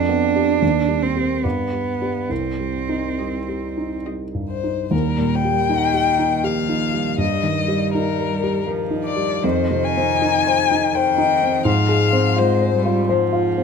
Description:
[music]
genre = classical, slow romantic movement for piano trio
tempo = 67-85 BPM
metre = 3/4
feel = rubato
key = C minor, Eb major from 4.9 s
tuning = A4 = 441 Hz
[part]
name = rich violin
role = melody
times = 0.0-13.1 s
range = Bb4 to Ab5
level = -21 LUFS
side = left 10 dB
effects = none
[part]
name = warm cello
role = second line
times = 0.0-13.6 s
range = Eb3 to D4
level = -24 LUFS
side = right 6 dB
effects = none
[part]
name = dark baby grand piano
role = accompaniment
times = 0.0-13.6 s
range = C2 to C5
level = -20 LUFS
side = equal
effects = none
[sound]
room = light reverb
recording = minimal, uncompressed stereo recording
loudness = -17 LUFS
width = side -6 dB against mid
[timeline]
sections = 0.0-4.9 A section; 4.9-13.6 B section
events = none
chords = 0.0 G7/F; 0.6 Cm/Eb; 1.4 G; 2.3 Cm; 4.9 Eb; 7.2 Eb/G; 9.4 Fm7; 11.7 Fm/Ab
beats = 0.62 1.44 | 2.30 3.19 4.06 | 4.92 5.70 6.44 | 7.19 7.94 8.67 | 9.44 10.22 10.95 | 11.66 12.38 13.10

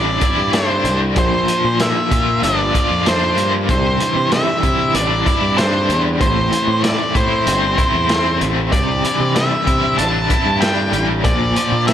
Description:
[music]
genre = psychedelic rock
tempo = 95 BPM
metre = 4/4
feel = straight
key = C mixolydian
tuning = A4 = 441 Hz
[part]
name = octave-fuzz lead guitar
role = melody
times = 0.0-11.9 s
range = C5 to A5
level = -19 LUFS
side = equal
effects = distortion, analog delay
[part]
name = tonewheel organ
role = sustained chords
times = 0.0-11.9 s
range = E3 to F4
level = -29 LUFS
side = right 5 dB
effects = none
[part]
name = cranked stack guitar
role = riff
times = 0.0-11.9 s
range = A2 to F4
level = -19 LUFS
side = left 1 dB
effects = overdrive, tremolo
[part]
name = fuzz fingered electric bass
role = bass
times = 0.0-11.9 s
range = G1 to C3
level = -21 LUFS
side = equal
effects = overdrive
[part]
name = crunchy breakbeat drum kit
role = drums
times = 0.2-11.9 s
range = hi-hat, kick drum, snare drum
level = -21 LUFS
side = equal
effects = none
[sound]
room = light reverb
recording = none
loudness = -14 LUFS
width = side -10 dB against mid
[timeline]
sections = 0.0-11.9 A section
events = none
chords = 0.0 Cadd9; 1.2 Bb; 3.7 Cadd9; 6.2 Am; 8.7 Cadd9; 11.2 Bb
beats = 0.54 | 1.17 1.80 2.43 3.06 | 3.69 4.32 4.95 5.58 | 6.21 6.84 7.47 8.10 | 8.73 9.36 9.99 10.62 | 11.25 11.88

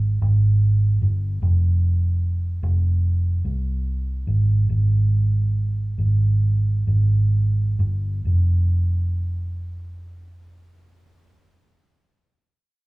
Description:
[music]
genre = pop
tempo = 63-75 BPM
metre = 4/4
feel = straight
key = F minor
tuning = A4 = 439 Hz
[part]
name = vintage muted fingered electric bass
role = bass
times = 0.0-11.8 s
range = F1 to C2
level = -18 LUFS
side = right 1 dB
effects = none
[sound]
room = light reverb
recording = band playing live in one room, studio reverb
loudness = -18 LUFS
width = side -22 dB against mid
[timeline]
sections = 0.0-8.3 A section; 8.3-12.0 B section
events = slowing down 1.4-8.3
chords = none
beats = 0.61 | 1.41 2.22 3.03 3.85 | 4.69 5.55 6.42 7.33 | 8.26 9.20 10.15 11.09

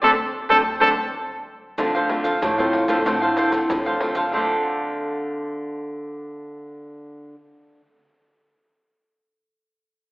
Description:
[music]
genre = samba and choro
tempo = 94 BPM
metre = 4/4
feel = straight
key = D minor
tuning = A4 = 440 Hz
[part]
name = clear trumpet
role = melody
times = 0.0-0.9 s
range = A4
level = -19 LUFS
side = equal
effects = none
[part]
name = cavaquinho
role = accompaniment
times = 0.0-7.9 s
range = D4 to F5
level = -23 LUFS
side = right 1 dB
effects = none
[part]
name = nylon-string guitar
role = accompaniment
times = 0.0-8.0 s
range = A2 to F4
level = -27 LUFS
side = equal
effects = none
[part]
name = nylon-string guitar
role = bass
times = 0.0-7.3 s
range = A2 to D3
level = -26 LUFS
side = equal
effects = none
[part]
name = surdo, maracas and pandeiro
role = percussion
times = 0.0-4.5 s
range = none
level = -32 LUFS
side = equal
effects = none
[sound]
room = wet recital hall reverb, RT60 1.6 s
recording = recorded in a church or concert hall, telephone sound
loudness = -19 LUFS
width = side -24 dB against mid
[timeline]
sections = 0.0-1.8 A section; 1.8-4.3 B section; 4.3-6.9 C section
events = band accent 0.0-1.8; drum fill 0.5-1.8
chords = 0.0 D5; 1.8 Dm7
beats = 0.50 1.14 | 1.78 2.42 3.06 3.69 | 4.33 4.97 5.61 6.25

